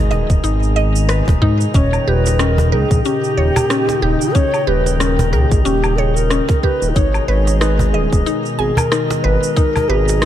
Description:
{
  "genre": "organic downtempo",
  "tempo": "92 BPM",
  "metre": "4/4",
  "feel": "swing 57% on 16ths",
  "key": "unclear",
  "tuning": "A4 = 440 Hz",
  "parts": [
    { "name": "warm analog pad", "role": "sustained chords", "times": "0.0-10.3 s", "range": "Bb2 to Bb5", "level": "-22 LUFS", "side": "left 2 dB", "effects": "chorus, sidechain pumping" },
    { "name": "smooth synth bass", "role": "bass", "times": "0.0-10.3 s", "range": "Eb1 to Ab2", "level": "-16 LUFS", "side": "equal", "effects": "none" },
    { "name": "drifting glass-harmonics texture", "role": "texture", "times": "0.0-10.3 s", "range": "Eb4 to Eb5", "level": "-28 LUFS", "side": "left 2 dB", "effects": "chorus, built-in reverb" },
    { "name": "mallet-like synth pluck", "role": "arpeggios", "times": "0.1-10.3 s", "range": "Db4 to Ab5", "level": "-22 LUFS", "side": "left 1 dB", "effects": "chorus, tape echo" },
    { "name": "cajon", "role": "percussion", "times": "0.1-10.2 s", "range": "none", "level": "-21 LUFS", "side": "right 2 dB", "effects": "none" },
    { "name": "electronic kick drum", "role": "drums", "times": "0.3-9.7 s", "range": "none", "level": "-15 LUFS", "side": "equal", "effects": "none" },
    { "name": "electronic shaker, rim click and woodblock", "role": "drums", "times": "0.3-10.3 s", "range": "none", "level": "-25 LUFS", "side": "equal", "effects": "none" },
    { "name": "mellow low Native American-style wooden flute", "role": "melody", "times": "1.8-10.3 s", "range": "Eb4 to Db5", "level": "-20 LUFS", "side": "equal", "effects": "tape echo" }
  ],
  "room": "light reverb, digital ambience",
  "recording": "dark, warm production",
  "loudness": "-13 LUFS",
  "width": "side -11 dB against mid",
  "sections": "0.0-10.3 A section",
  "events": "none",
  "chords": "0.0 Abm; 1.7 Eb7; 7.0 Abm"
}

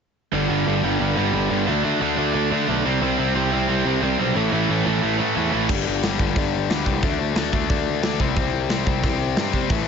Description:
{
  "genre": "punk rock",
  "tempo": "179 BPM",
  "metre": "4/4",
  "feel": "straight",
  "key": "unclear",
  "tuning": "A4 = 440 Hz",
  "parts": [
    { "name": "biting overdriven guitar", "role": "riff", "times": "0.3-9.9 s", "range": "G2 to D4", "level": "-23 LUFS", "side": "left 11 dB", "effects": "none" },
    { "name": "cranked stack guitar", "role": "riff", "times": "0.3-5.7 s", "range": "G2 to D4", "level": "-22 LUFS", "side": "right 17 dB", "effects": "overdrive" },
    { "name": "fuzz picked electric bass", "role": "bass", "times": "0.3-9.9 s", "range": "G1 to D3", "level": "-25 LUFS", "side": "equal", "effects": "overdrive" },
    { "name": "big rock drum kit", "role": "drums", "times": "5.7-9.8 s", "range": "crash cymbal, hi-hat, kick drum, snare drum", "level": "-23 LUFS", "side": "right 1 dB", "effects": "none" }
  ],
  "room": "light reverb",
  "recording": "nothing above 7.7 kHz",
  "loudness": "-19 LUFS",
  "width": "side -6 dB against mid",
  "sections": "0.3-5.7 A section; 5.7-9.9 B section",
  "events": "none",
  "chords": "0.3 G5; 1.7 D5; 2.8 C5; 4.4 A5; 5.7 G5; 7.0 D5; 8.2 C5"
}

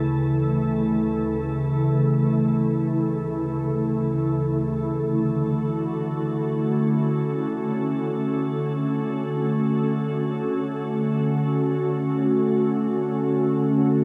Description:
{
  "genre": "ambient",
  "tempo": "free time",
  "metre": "none",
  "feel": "none",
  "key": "D major",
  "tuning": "A4 = 436 Hz",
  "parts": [
    { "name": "glassy FM pad", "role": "solo", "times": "0.0-14.0 s", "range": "D2 to A4", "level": "-23 LUFS", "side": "equal", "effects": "ensemble chorus, built-in reverb, delay" }
  ],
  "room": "wet huge ambient reverb, RT60 9.3 s",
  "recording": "in a vast, echoing space",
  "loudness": "-23 LUFS",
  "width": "mono",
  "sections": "0.0-4.8 A section; 4.8-14.0 B section",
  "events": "none",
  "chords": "0.0 Dmaj7"
}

